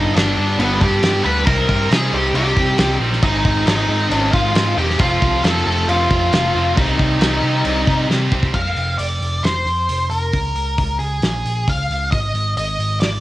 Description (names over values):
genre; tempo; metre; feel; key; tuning
quiet-loud alternative rock; 135 BPM; 4/4; straight; C minor; A4 = 439 Hz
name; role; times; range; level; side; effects
octave-fuzz lead guitar; melody; 0.0-13.2 s; B3 to B5; -20 LUFS; equal; distortion
cranked stack guitar; riff; 0.0-8.5 s; G2 to G4; -26 LUFS; left 5 dB; overdrive, cassette tape
heavy high-gain guitar; riff; 0.0-8.5 s; G2 to G4; -25 LUFS; right 5 dB; distortion, cassette tape
heavy high-gain guitar; riff; 0.0-8.5 s; F2 to C4; -24 LUFS; equal; distortion, cassette tape
overdriven picked electric bass; bass; 0.0-13.2 s; E1 to C3; -21 LUFS; equal; none
loose indie drum kit; drums; 0.2-13.1 s; crash cymbal, hi-hat, kick drum, snare drum; -20 LUFS; equal; cassette tape
room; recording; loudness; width
light reverb; home recording on cassette; -15 LUFS; side -16 dB against mid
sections
0.0-8.5 A section; 8.5-13.2 B section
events
drum fill 8.1-8.5; half time 8.5-13.2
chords
0.0 G; 1.5 Cm; 3.2 Ab; 5.0 F; 6.8 Cm; 8.5 F5; 10.3 Db; 12.1 Ab5